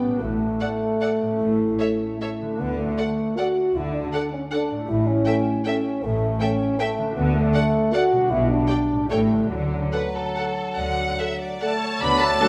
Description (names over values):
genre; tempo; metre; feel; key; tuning
classical; 135-171 BPM; 3/4; rubato; D major; A4 = 440 Hz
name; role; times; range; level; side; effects
mellow French horn section; sustained chords; 0.0-12.5 s; F#3 to F#4; -26 LUFS; equal; none
concert harp; arpeggios; 0.0-12.5 s; A2 to D5; -34 LUFS; equal; none
warm chamber cello section; bass; 0.2-12.3 s; A2 to D3; -31 LUFS; equal; none
warm symphonic double bass section; bass; 0.2-12.3 s; A1 to D2; -32 LUFS; equal; none
warm symphonic violin section; melody; 0.6-12.5 s; E5 to B5; -30 LUFS; equal; none
rich symphonic violin section; second line; 0.6-12.5 s; D4 to F#5; -34 LUFS; equal; none
dark symphonic viola section; accompaniment; 0.6-12.5 s; F#3 to A4; -32 LUFS; equal; none
large flute ensemble; second line; 11.6-12.5 s; A4 to B4; -32 LUFS; equal; none
clear clarinet; second line; 12.0-12.5 s; D4; -36 LUFS; equal; none
warm oboe; second line; 12.0-12.5 s; D5 to F#5; -29 LUFS; equal; none
dark bassoon; accompaniment; 12.0-12.5 s; F#3; -28 LUFS; equal; none
clear trombone section; sustained chords; 12.4-12.5 s; F#3 to D4; -30 LUFS; equal; none
room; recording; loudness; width
moderate scoring stage reverb, RT60 1.8 s; none; -23 LUFS; mono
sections
0.0-12.0 A section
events
none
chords
0.2 D/A; 1.4 A; 2.6 D; 4.9 A7; 7.2 D; 8.3 G/B; 9.1 A7; 9.5 D